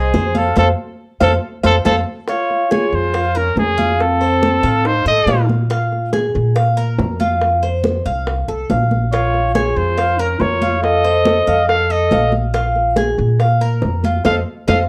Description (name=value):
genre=latin, Cuban son and guajira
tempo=140 BPM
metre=4/4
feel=straight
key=Bb minor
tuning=A4 = 439 Hz
part: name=warm trumpet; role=melody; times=0.0-5.5, 9.1-14.8 s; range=G#4 to F5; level=-20 LUFS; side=equal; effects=none
part: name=hollow concert flute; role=second line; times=0.0-5.5, 9.1-14.8 s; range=C4 to C5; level=-25 LUFS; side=equal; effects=none
part: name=Cuban tres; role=arpeggios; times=0.0-14.8 s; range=F4 to F5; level=-22 LUFS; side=equal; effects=none
part: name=upright bass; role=bass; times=0.0-14.8 s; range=Bb1 to Bb2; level=-21 LUFS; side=equal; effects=none
part: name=bongos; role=percussion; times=0.1-14.8 s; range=none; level=-27 LUFS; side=equal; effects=none
part: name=congas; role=percussion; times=0.1-14.8 s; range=none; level=-26 LUFS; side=equal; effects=none
room=moderate studio reverb, RT60 0.7 s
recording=worn, warbling old tape, cassette tape, warbly pitch drift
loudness=-16 LUFS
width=mono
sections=0.0-2.3 A section; 2.3-14.9 B section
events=band accent 0.6-2.3, 14.3-14.9; drum fill 1.4-2.3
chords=0.0 F7#9/C; 0.6 F; 2.3 Bbm7; 4.0 F7; 5.7 Bb5; 7.4 F; 9.1 Bbm7; 10.8 F7; 12.5 Bb5; 14.3 F7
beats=0.14 | 0.57 1.00 1.42 1.85 | 2.28 2.71 3.13 3.56 | 3.99 4.42 4.84 5.27 | 5.70 6.13 6.56 6.98 | 7.41 7.84 8.27 8.69 | 9.12 9.55 9.98 10.40 | 10.83 11.26 11.69 12.12 | 12.54 12.97 13.40 13.83 | 14.26 14.69